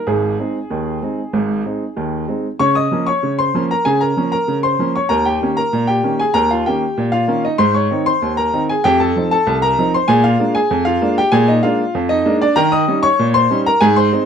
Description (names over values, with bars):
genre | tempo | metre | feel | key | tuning
ragtime piano | 96 BPM | 2/4 | straight | unclear | A4 = 440 Hz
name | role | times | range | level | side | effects
clear upright piano | solo | 0.0-14.3 s | Ab1 to Eb6 | -14 LUFS | equal | none
room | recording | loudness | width
light reverb | none | -14 LUFS | side -7 dB against mid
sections
0.0-2.6 A section; 2.6-14.3 B section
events
none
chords
0.1 Ab; 2.6 Bbm/Db; 5.1 Eb7; 7.6 Ab; 8.8 F7; 10.1 Bb7; 12.6 Eb7